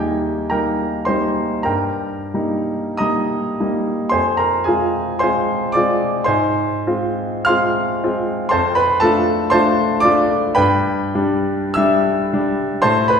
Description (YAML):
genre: classical, romantic nocturne for solo piano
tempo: 42-61 BPM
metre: 4/4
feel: rubato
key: unclear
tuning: A4 = 440 Hz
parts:
  - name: clear concert grand piano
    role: solo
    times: 0.0-13.2 s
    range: Eb2 to F6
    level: -16 LUFS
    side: equal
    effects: none
room: wet scoring stage reverb, RT60 1.5 s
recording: heard from further back in the room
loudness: -16 LUFS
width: side -6 dB against mid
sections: 0.0-13.2 A section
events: none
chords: 0.0 Eb; 1.7 Eb/G; 4.2 Fm; 6.3 Fm/Ab; 8.5 Dm7/F; 10.6 G